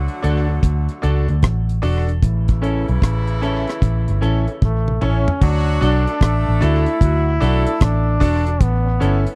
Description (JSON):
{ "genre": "roots reggae", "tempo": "75 BPM", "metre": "4/4", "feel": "swing 65% on 16ths", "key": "D major", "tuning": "A4 = 441 Hz", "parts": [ { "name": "clear horn section", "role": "second line", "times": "0.0-8.2 s", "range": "C#3 to A4", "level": "-31 LUFS", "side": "equal", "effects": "tape echo" }, { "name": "vintage muted fingered electric bass", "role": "bass", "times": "0.0-9.2 s", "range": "E1 to D2", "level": "-20 LUFS", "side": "equal", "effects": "none" }, { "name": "deep reggae drum kit", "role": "drums", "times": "0.1-9.4 s", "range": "crash cymbal, hi-hat, kick drum, rim click, toms", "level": "-18 LUFS", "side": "equal", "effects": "none" }, { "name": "clean electric guitar", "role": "accompaniment", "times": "0.2-9.2 s", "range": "C#4 to A4", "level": "-29 LUFS", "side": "equal", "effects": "lush chorus, tape echo" }, { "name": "bright baby grand piano", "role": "stabs", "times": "0.2-9.3 s", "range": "C#4 to D5", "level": "-29 LUFS", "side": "equal", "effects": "none" }, { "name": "brilliant trombone", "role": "melody", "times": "4.6-9.2 s", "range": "A3 to E4", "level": "-24 LUFS", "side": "equal", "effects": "tape echo" } ], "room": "little or no reverb", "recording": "dry, close 1970s-style studio recording", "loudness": "-18 LUFS", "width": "mono", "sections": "0.0-5.4 A section; 5.4-9.4 B section", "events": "drum fill 4.6-5.4", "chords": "0.0 D; 2.2 A; 5.4 D; 8.6 A" }